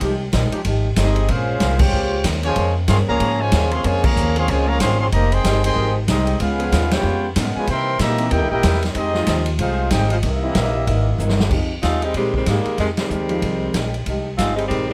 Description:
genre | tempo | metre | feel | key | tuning
jazz, big band swing | 188 BPM | 4/4 | swing 61% on 8ths | F minor | A4 = 443 Hz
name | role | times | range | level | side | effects
mellow trumpet section | melody | 0.0-11.3 s | Bb3 to C6 | -25 LUFS | equal | plate reverb
mellow trombone section | second line | 0.0-11.3 s | Cb3 to G4 | -27 LUFS | equal | none
picked steel-string acoustic guitar | accompaniment | 0.0-14.9 s | C3 to C5 | -31 LUFS | equal | none
clear trombone section | sustained chords | 0.0-10.8 s | Db3 to Bb4 | -31 LUFS | equal | none
upright bass | bass | 0.0-14.9 s | F1 to C3 | -23 LUFS | equal | none
swinging big-band drum kit | drums | 0.0-14.8 s | crash cymbal, hi-hat, kick drum, ride cymbal, snare drum | -26 LUFS | equal | none
dark baby grand piano | accompaniment | 11.5-14.9 s | F3 to G4 | -29 LUFS | equal | none
bright saxophone section | melody | 11.8-14.9 s | C3 to F4 | -24 LUFS | equal | plate reverb
room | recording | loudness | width
light reverb | none | -19 LUFS | mono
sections
0.0-11.5 A section; 11.5-14.9 B section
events
band accent 1.8, 4.0, 6.9, 12.9; drum fill 11.2-11.5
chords
0.0 Fm9; 1.3 Bbm9; 5.1 Fm9; 6.4 Db7; 7.7 C7#9; 9.0 Fm9; 10.2 C7#9; 11.5 Fm9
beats
| 0.02 0.34 0.66 0.97 | 1.29 1.61 1.93 2.25 | 2.57 2.89 3.21 3.53 | 3.85 4.17 4.49 4.81 | 5.13 5.45 5.76 6.08 | 6.40 6.72 7.04 7.36 | 7.68 8.00 8.32 8.64 | 8.96 9.27 9.59 9.91 | 10.23 10.55 10.87 11.19 | 11.51 11.83 12.14 12.46 | 12.78 13.10 13.42 13.74 | 14.06 14.38 14.70

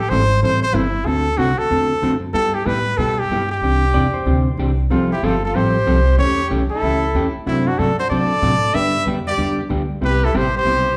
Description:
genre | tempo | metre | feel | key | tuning
country, western swing | 188 BPM | 4/4 | swing 64% on 8ths | C major | A4 = 440 Hz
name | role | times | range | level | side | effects
bright trumpet | melody | 0.0-11.0 s | E4 to E5 | -22 LUFS | equal | none
upright bass | bass | 0.0-11.0 s | F1 to C3 | -24 LUFS | equal | none
hollow-body jazz guitar | accompaniment | 0.1-10.9 s | C3 to A4 | -23 LUFS | equal | none
clean lap steel guitar | second line | 3.9-4.8 s | C5 to D5 | -31 LUFS | equal | none
dark fiddle | second line | 4.9-11.0 s | C4 to B4 | -29 LUFS | equal | none
room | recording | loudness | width
wet large studio reverb, RT60 0.9 s | band playing live in one room | -18 LUFS | mono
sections
0.0-11.0 A section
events
none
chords
0.0 Am7; 1.1 D7; 2.3 G6; 3.6 Cadd9; 4.9 Fadd9; 6.2 A7; 7.5 D7/F#; 8.7 G; 10.0 Cmaj7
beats
0.10 0.42 0.74 | 1.06 1.38 1.70 2.02 | 2.34 2.66 2.98 3.30 | 3.62 3.94 4.26 4.58 | 4.91 5.22 5.54 5.87 | 6.18 6.50 6.82 7.14 | 7.46 7.78 8.10 8.42 | 8.74 9.06 9.38 9.70 | 10.02 10.34 10.66

